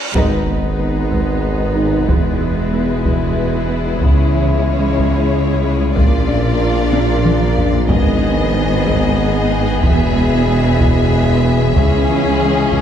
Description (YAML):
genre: cinematic, hybrid orchestral and electronic film score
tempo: 62 BPM (dotted quarters)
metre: 6/8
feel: straight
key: G# minor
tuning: A4 = 440 Hz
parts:
  - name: reverse cymbal and impact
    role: sound effects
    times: 0.0-2.1 s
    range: none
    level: -26 LUFS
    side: equal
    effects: none
  - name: rich studio violin section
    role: melody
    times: 0.1-12.8 s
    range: B4 to E5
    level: -25 LUFS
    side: left 3 dB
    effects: none
  - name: warm symphonic violin section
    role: second line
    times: 0.1-12.8 s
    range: D#4 to G#4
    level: -24 LUFS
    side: left 4 dB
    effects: none
  - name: warm studio viola section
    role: accompaniment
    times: 0.1-12.8 s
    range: G#3 to C#4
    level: -23 LUFS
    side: equal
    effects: none
  - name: evolving wavetable pad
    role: sustained chords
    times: 0.1-12.8 s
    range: D#3 to C#5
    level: -23 LUFS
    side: left 2 dB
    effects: chorus, built-in reverb
  - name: warm French horn section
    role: sustained chords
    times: 0.1-12.8 s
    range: G#3 to E4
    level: -24 LUFS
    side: left 4 dB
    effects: none
  - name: clear symphonic double bass section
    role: bass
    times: 0.1-12.8 s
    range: E1 to C#2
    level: -23 LUFS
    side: right 2 dB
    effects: none
  - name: rich symphonic cello section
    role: bass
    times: 0.1-12.8 s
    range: C#2 to A#2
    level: -23 LUFS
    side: right 3 dB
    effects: none
  - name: warm tuba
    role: bass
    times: 0.1-12.8 s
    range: E1 to C#2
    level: -23 LUFS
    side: right 2 dB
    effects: none
  - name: taiko ensemble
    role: drums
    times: 0.1-12.8 s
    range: none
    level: -18 LUFS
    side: equal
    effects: none
  - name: thumb-piano-like synth pluck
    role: arpeggios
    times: 0.2-12.8 s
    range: C#3 to E#4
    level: -25 LUFS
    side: right 2 dB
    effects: none
  - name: saturated sub bass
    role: bass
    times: 0.2-12.8 s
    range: E1 to C#2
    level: -22 LUFS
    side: equal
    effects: none
room: wet scoring stage reverb, RT60 1.6 s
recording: heard from further back in the room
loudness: -13 LUFS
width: side -9 dB against mid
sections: 0.1-12.8 A section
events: break 0.0; reverse cymbal 0.0; band accent 0.1-0.8; impact 0.1-2.1; drum fill 6.9-7.9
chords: 0.1 G#m; 2.1 E; 4.0 C#m; 6.0 A#; 7.9 G#m; 9.8 E; 11.8 C#m